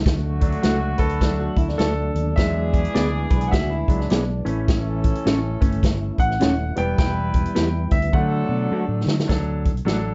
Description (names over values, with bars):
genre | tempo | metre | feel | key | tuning
uptempo 1960s-style soul | 104 BPM | 4/4 | swing 62% on 8ths | D major | A4 = 440 Hz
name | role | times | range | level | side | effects
percussive tonewheel organ | sustained chords | 0.0-9.3 s | D3 to F#4 | -34 LUFS | equal | none
mellow horn section | second line | 0.1-9.0 s | D3 to B4 | -33 LUFS | equal | none
fingered electric bass | bass | 0.1-10.1 s | Eb1 to D3 | -27 LUFS | equal | none
swinging big-band drum kit | drums | 0.1-10.0 s | hi-hat, kick drum, snare drum | -24 LUFS | equal | none
clear grand piano | accompaniment | 0.4-10.1 s | D3 to G5 | -29 LUFS | equal | none
mellow electric guitar | stabs | 0.6-10.0 s | A3 to C#5 | -26 LUFS | equal | subtle chorus
electric guitar through a small old amp | riff | 1.0-4.4 s | D4 to B4 | -33 LUFS | equal | subtle chorus
room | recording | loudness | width
light reverb | dark, warm production, nothing above 7.7 kHz | -21 LUFS | mono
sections
0.1-9.3 A section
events
grand piano solo 0.1-9.3; drum fill 8.1-9.3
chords
0.1 D; 2.4 E7; 4.4 A; 6.7 Em; 8.1 D